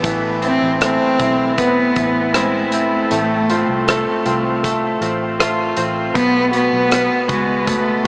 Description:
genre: pop ballad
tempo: 79 BPM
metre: 4/4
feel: straight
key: A harmonic minor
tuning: A4 = 440 Hz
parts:
  - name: bright grand piano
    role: accompaniment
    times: 0.0-8.1 s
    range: E3 to F#4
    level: -19 LUFS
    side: equal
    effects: none
  - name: twelve-string electric guitar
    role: arpeggios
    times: 0.0-8.1 s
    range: A2 to F4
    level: -22 LUFS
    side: equal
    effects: analog chorus, diffuse ambient delay
  - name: vintage muted fingered electric bass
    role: bass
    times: 0.0-8.0 s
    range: A1 to C#2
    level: -28 LUFS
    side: equal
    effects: none
  - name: loose indie drum kit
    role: drums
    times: 0.0-7.9 s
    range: hi-hat, kick drum, rim click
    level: -23 LUFS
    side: equal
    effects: none
  - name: rich cello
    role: melody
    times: 0.4-8.1 s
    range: G#3 to C4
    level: -18 LUFS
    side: equal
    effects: diffuse ambient delay
room: wet huge ambient reverb, RT60 8.0 s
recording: dreamy mix soaked in reverb, small speaker sound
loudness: -14 LUFS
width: side -31 dB against mid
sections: 0.0-8.1 A section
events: none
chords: 0.0 Amadd9; 3.1 F/A; 6.2 B5

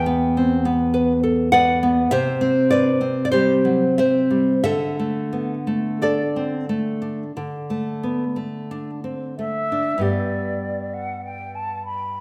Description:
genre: romantic duo for flute and classical guitar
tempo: 44-52 BPM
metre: 4/4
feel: rubato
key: G major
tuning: A4 = 439 Hz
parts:
  - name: nylon-string guitar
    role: accompaniment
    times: 0.0-12.2 s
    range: E2 to G5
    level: -21 LUFS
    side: equal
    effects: none
  - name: concert flute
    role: melody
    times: 9.4-12.2 s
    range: D5 to B5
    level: -28 LUFS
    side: equal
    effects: tape echo
room: wet recital hall reverb, RT60 1.4 s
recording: none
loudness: -21 LUFS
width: mono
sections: 0.0-10.0 A section; 10.0-12.2 B section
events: none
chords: 0.0 Em; 2.1 C5; 4.7 D5; 10.0 G

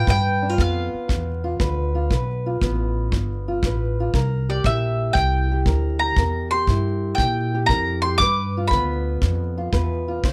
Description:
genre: acoustic country blues, solo or duo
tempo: 118 BPM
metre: 4/4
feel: swing 68% on 8ths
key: G mixolydian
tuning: A4 = 440 Hz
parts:
  - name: mandolin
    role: melody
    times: 0.0-10.2 s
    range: D5 to D6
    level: -25 LUFS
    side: equal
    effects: none
  - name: fingerpicked old ladder-braced acoustic guitar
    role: accompaniment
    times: 0.0-10.3 s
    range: G2 to C5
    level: -29 LUFS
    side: equal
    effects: none
  - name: upright bass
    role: bass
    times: 0.0-10.3 s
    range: G1 to Bb2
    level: -25 LUFS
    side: equal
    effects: none
  - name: kick drum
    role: drums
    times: 0.1-10.3 s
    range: none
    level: -26 LUFS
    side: equal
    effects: none
room: light reverb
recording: none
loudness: -22 LUFS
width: mono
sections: 0.0-10.3 A section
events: none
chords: 0.0 G7; 4.1 C7; 8.2 G7

